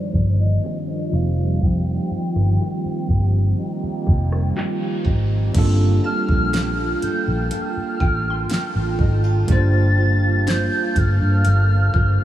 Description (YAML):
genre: contemporary R&B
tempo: 61 BPM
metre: 4/4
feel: straight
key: G minor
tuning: A4 = 438 Hz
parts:
  - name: hollow clarinet-like synth lead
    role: melody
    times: 0.0-12.2 s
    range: D5 to A6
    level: -27 LUFS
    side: left 1 dB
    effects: chorus, tape echo
  - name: bell-like tine electric piano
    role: accompaniment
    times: 0.0-12.2 s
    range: F3 to C5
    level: -27 LUFS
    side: right 3 dB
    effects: medium stereo tremolo
  - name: glassy FM pad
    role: sustained chords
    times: 0.0-12.2 s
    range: Eb3 to A5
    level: -28 LUFS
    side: right 2 dB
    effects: ensemble chorus, built-in reverb
  - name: fingerpicked steel-string acoustic guitar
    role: arpeggios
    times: 0.0-12.2 s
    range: G2 to A4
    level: -30 LUFS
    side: left 3 dB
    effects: wide subtle chorus, tape echo
  - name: vintage muted fingered electric bass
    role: bass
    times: 0.1-12.2 s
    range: F1 to G2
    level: -18 LUFS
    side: equal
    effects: none
  - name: smooth R&B drum kit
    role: drums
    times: 0.1-12.2 s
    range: crash cymbal, handclaps, hi-hat, kick drum, rim click, snare drum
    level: -23 LUFS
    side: equal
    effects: none
  - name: glassy wavetable pluck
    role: texture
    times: 6.0-12.2 s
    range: C5 to C6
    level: -38 LUFS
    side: right 3 dB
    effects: chorus, tape echo
room: light reverb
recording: low-pass filter, small room ambience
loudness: -17 LUFS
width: side -12 dB against mid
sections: 0.0-5.5 A section; 5.5-12.2 B section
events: filter sweep 0.0-5.5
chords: 0.0 Ebmaj9; 1.1 F9sus4; 5.5 Gm9